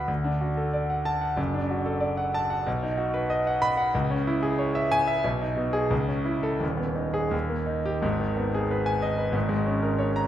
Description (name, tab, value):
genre	classical, virtuoso piano study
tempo	83-95 BPM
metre	2/4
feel	rubato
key	G# minor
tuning	A4 = 441 Hz
part	clear concert grand piano	solo	0.0-10.3 s	D#1 to B5	-24 LUFS	equal	none
room	wet recital hall reverb, RT60 1.4 s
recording	heard from further back in the room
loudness	-24 LUFS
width	side -11 dB against mid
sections	0.0-8.0 A section; 8.0-10.3 B section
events	none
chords	0.1 D; 1.4 D/F#; 2.7 B; 3.9 C#m; 5.2 G#m/B; 5.9 A/C#; 6.6 G#m/D#; 7.3 D#; 8.0 G#m; 9.3 A#m7/G#